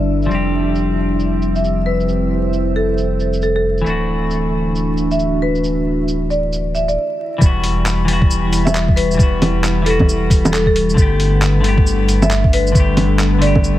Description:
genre	future garage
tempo	135 BPM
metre	4/4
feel	swing 62% on 16ths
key	E minor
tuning	A4 = 440 Hz
part	marimba with medium hard mallets	melody	0.0-13.7 s	A4 to E5	-22 LUFS	equal	dub echo
part	semi-hollow electric guitar	accompaniment	0.0-13.8 s	D3 to G4	-20 LUFS	left 2 dB	vintage 12-bit sampler grit, sidechain pumping, ping-pong delay
part	warbly tape-like pad	sustained chords	0.0-13.8 s	D3 to F#5	-23 LUFS	equal	chorus, built-in reverb, phaser, sidechain pumping
part	warm sub bass	bass	0.0-13.8 s	D1 to G1	-19 LUFS	equal	sidechain pumping
part	backwards swelling texture	texture	0.0-13.8 s	B3 to E5	-31 LUFS	right 4 dB	built-in reverb
part	lo-fi sampler-style drum kit	drums	0.2-13.7 s	bongos, handclaps, hi-hat, shaker	-21 LUFS	right 1 dB	low-pass filter on perc, low-pass filter on hats, low-pass filter on snare
part	electronic kick drum	drums	7.4-13.6 s	none	-13 LUFS	equal	none
room	digital ambience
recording	vinyl crackle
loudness	-13 LUFS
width	side -14 dB against mid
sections	0.0-7.4 A section; 7.4-13.8 B section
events	stop 7.0-7.4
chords	0.3 Fsus2; 3.9 Dadd9; 7.4 Emadd9; 11.0 Gadd9

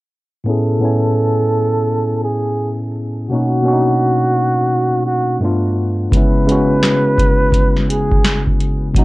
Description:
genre	lo-fi hip hop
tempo	85 BPM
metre	4/4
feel	swing 64% on 16ths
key	unclear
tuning	A4 = 441 Hz
part	tine electric piano	accompaniment	0.4-9.0 s	G2 to G#5	-16 LUFS	left 1 dB	medium stereo tremolo, low-pass filter
part	breathy flugelhorn	melody	0.5-9.0 s	F#4 to B4	-18 LUFS	right 2 dB	low-pass filter
part	booming analog drum machine	drums	6.1-9.0 s	hi-hat, kick drum, snare drum	-15 LUFS	equal	vintage 12-bit sampler grit
room	moderate studio ambience, RT60 0.5 s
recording	cassette tape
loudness	-13 LUFS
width	side -20 dB against mid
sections	0.5-9.0 A section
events	filter sweep 0.5-9.0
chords	0.5 Amaj7; 3.3 Bmaj7; 5.4 G9; 6.1 F#7sus4/C#

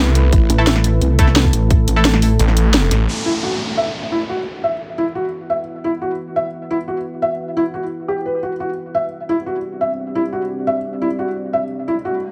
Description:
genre	dark technical drum and bass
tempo	174 BPM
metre	4/4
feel	straight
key	E minor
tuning	A4 = 442 Hz
part	deep dark ambient pad	sustained chords	0.0-12.3 s	A3 to F#5	-28 LUFS	equal	chorus, built-in reverb, sidechain pumping
part	snarling distorted saw bass	bass	0.0-3.1 s	A1 to C2	-16 LUFS	equal	distortion, overdrive, sidechain pumping
part	drum and bass drum kit	drums	0.2-3.2 s	crash cymbal, hi-hat, snare drum	-20 LUFS	equal	low-pass filter on hats, low-pass filter on snare, low-pass filter on cymbals
part	electronic kick drum	drums	0.3-1.8 s	none	-15 LUFS	equal	none
part	pulsing pluck wobble bass	bass	0.5-2.4 s	A1 to C2	-17 LUFS	equal	chorus
part	band-passed chord stab	stabs	0.6-2.0 s	A3 to A4	-25 LUFS	equal	chorus, tape echo
part	downlifter and riser	sound effects	3.1-5.8, 11.8-12.3 s	none	-30 LUFS	equal	none
part	felt-muted upright piano	arpeggios	3.3-12.1 s	E4 to E5	-22 LUFS	equal	sidechain pumping, tape echo
room	light reverb, digital ambience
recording	none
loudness	-18 LUFS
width	mono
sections	0.0-3.1 A section; 3.1-12.3 B section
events	drop 0.0-3.1; kick drops out 2.4-3.1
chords	0.0 Amadd9; 3.1 Esus2; 8.6 Cadd9

